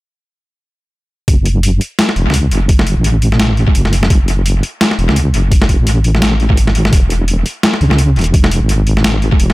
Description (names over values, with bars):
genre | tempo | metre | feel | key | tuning
half-time drum and bass | 170 BPM | 4/4 | swing 58% on 16ths, half-time | F# minor | A4 = 441 Hz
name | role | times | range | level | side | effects
deep soft wobble bass | bass | 1.3-9.5 s | E1 to C#2 | -12 LUFS | equal | chorus
boom bap sampler-style drum kit | drums | 1.3-9.5 s | hi-hat, snare drum | -16 LUFS | equal | overdrive, dub echo
electronic kick drum | drums | 1.3-9.4 s | none | -10 LUFS | equal | overdrive
room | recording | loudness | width
digital ambience | echo-heavy mix | -10 LUFS | side -19 dB against mid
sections
1.3-9.5 A section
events
none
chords
none